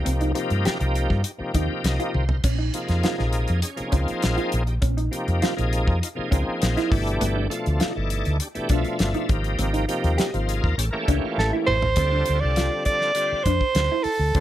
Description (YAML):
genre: electric jazz fusion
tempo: 101 BPM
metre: 4/4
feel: straight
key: unclear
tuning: A4 = 438 Hz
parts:
  - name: bright tonewheel organ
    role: accompaniment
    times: 0.0-14.4 s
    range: B2 to G5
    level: -27 LUFS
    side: left 1 dB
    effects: slow rotary speaker, overdrive, chorus vibrato, plate reverb
  - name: mellow electric guitar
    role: stabs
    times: 0.1-14.4 s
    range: B3 to G4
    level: -29 LUFS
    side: right 1 dB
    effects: wide subtle chorus, plate reverb
  - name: fingered electric bass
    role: bass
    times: 0.1-14.4 s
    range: G1 to G2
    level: -23 LUFS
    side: equal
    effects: none
  - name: damped 70s drum kit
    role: drums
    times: 0.1-14.4 s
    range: crash cymbal, hi-hat, kick drum, snare drum, toms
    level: -26 LUFS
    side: equal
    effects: none
  - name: warm soprano saxophone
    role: melody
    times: 11.4-14.4 s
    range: A4 to D5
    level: -22 LUFS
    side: right 3 dB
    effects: plate reverb
room: light reverb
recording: none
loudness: -20 LUFS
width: side -13 dB against mid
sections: 0.0-12.0 A section; 12.0-14.4 B section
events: tonewheel organ fill 1.3-2.4; drum fill 2.1, 11.4-12.0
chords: 0.0 Cm7; 2.4 Bbm7; 6.9 G7; 9.3 Abmaj7; 10.8 A7b9; 12.0 Dm7